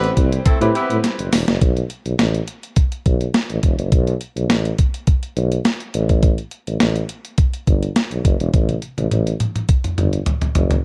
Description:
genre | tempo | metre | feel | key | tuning
early-eighties boogie funk | 104 BPM | 4/4 | straight | unclear | A4 = 440 Hz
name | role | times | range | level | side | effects
mellow horn section | second line | 0.0-1.0 s | A3 to B4 | -27 LUFS | equal | none
warm baby grand piano | accompaniment | 0.0-1.3 s | C4 to B4 | -25 LUFS | equal | none
clear studio string section | sustained chords | 0.0-1.6 s | G3 to C4 | -36 LUFS | equal | none
warm tuba | bass | 0.0-10.8 s | E1 to A2 | -22 LUFS | equal | none
crisp 8-bit digital drum machine | drums | 0.0-10.8 s | hi-hat, kick drum, snare drum, toms | -20 LUFS | equal | none
room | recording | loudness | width
little or no reverb | dark, warm production | -19 LUFS | mono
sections
0.0-1.6 A section; 1.6-10.8 B section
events
drum fill 1.0-1.6, 8.5-10.8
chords
0.0 Am9; 1.6 B5; 5.9 N.C.

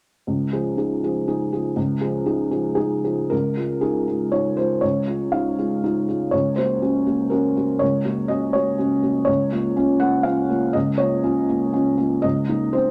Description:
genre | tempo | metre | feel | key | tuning
neoclassical minimalist piano | 121 BPM | 3/4 | rubato | Db major | A4 = 440 Hz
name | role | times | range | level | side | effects
felt-muted upright piano | solo | 0.3-12.9 s | Db2 to Gb5 | -21 LUFS | equal | none
room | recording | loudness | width
moderate club reverb, RT60 0.7 s | none | -21 LUFS | mono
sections
0.3-3.3 A section; 3.3-12.9 B section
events
none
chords
0.3 Dbadd9; 6.3 Gb/Db; 9.3 Bbm/Db; 12.2 Abadd9/Db (rootless)

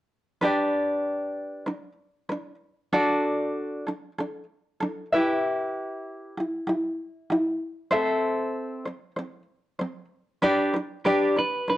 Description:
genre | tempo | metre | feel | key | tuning
acoustic pop | 96 BPM | 4/4 | straight | G major | A4 = 438 Hz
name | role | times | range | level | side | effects
tenor ukulele | accompaniment | 0.4-11.8 s | C4 to E5 | -24 LUFS | equal | none
twelve-string electric guitar | melody | 11.1-11.8 s | G4 to B4 | -23 LUFS | equal | plate reverb
room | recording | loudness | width
moderate studio reverb, RT60 0.8 s | worn, warbling old tape, cassette tape, warbly pitch drift | -25 LUFS | side -14 dB against mid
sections
0.4-10.4 A section; 10.4-11.8 B section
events
none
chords
0.4 G; 2.9 D; 5.1 Em; 7.9 Am; 10.4 G

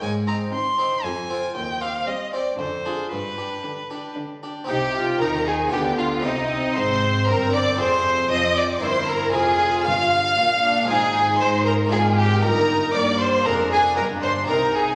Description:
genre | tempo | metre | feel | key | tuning
classical, baroque-style concerto movement with solo episodes | 116 BPM | 3/4 | straight | C minor, Eb major from 10.9 s | A4 = 440 Hz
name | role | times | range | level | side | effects
clear violin | melody | 0.0-14.9 s | Eb4 to C6 | -27 LUFS | equal | none
harpsichord | accompaniment | 0.0-14.9 s | Eb2 to C5 | -31 LUFS | equal | none
rich chamber cello section | bass | 0.0-14.9 s | Eb2 to Ab3 | -32 LUFS | equal | none
rich chamber violin section | melody | 0.5-14.9 s | G4 to F6 | -29 LUFS | equal | none
rich chamber violin section | second line | 0.5-14.9 s | C4 to F5 | -26 LUFS | equal | none
rich studio viola section | accompaniment | 0.5-14.9 s | D3 to F4 | -31 LUFS | equal | none
rich chamber double bass section | bass | 4.7-14.9 s | F1 to Ab2 | -34 LUFS | equal | none
room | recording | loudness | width
wet recital hall reverb, RT60 1.4 s | none | -21 LUFS | mono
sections
0.0-4.7 A section; 4.7-14.9 B section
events
none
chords
0.0 Ab; 1.0 Fm; 1.6 Cm/Eb; 2.6 Ddim/F; 3.1 G; 4.7 Cm; 5.7 G7/D; 6.2 Cm; 7.8 Fm; 8.8 C7/G; 9.3 Fm; 10.9 Fm7/Ab; 11.9 Bb7/Ab; 12.4 Eb/G; 13.5 Bb7/F; 14.0 Eb/G

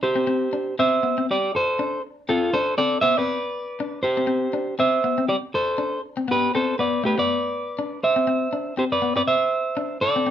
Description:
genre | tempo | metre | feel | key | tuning
highlife | 120 BPM | 4/4 | swing 55% on 16ths | C major | A4 = 437 Hz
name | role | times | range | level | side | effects
electric guitar at the edge of break-up | melody | 0.0-10.3 s | F4 to E5 | -21 LUFS | right 2 dB | none
electric guitar at the edge of break-up | accompaniment | 0.2-10.3 s | A3 to D4 | -26 LUFS | left 5 dB | spring reverb
room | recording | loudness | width
moderate studio ambience, RT60 0.5 s | band playing live in one room | -20 LUFS | side -10 dB against mid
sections
0.3-10.3 A section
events
none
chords
0.3 C; 6.3 G (rootless); 8.3 C

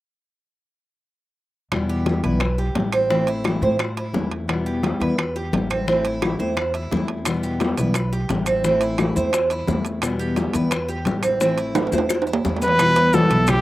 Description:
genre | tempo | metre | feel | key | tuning
latin, Cuban son and guajira | 174 BPM | 4/4 | straight | E minor | A4 = 440 Hz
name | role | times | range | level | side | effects
fingerpicked steel-string acoustic guitar | accompaniment | 1.7-13.5 s | B2 to E4 | -24 LUFS | left 2 dB | none
upright bass | bass | 1.7-13.6 s | A1 to A2 | -27 LUFS | equal | none
bongos | percussion | 1.7-13.6 s | none | -28 LUFS | left 4 dB | slapback echo
claves | percussion | 1.7-13.6 s | none | -32 LUFS | right 4 dB | none
congas | percussion | 1.7-13.6 s | none | -30 LUFS | left 1 dB | none
timbales | percussion | 1.7-13.6 s | none | -27 LUFS | right 5 dB | none
Cuban tres | arpeggios | 1.9-13.6 s | B3 to C5 | -24 LUFS | right 3 dB | slapback echo
maracas | percussion | 7.3-13.6 s | none | -35 LUFS | left 4 dB | none
warm trumpet | melody | 12.6-13.6 s | G4 to B4 | -17 LUFS | equal | slapback echo
dark cello | second line | 12.6-13.6 s | B2 to E3 | -25 LUFS | equal | none
room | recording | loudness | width
light reverb | recorded outdoors, with no room sound | -18 LUFS | side -16 dB against mid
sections
1.7-12.8 A section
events
drum fill 11.8-12.8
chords
1.7 Em; 3.1 Am; 4.5 Em; 5.9 Am; 7.3 Em; 8.6 Am; 10.0 Em; 11.4 Am; 12.8 Em

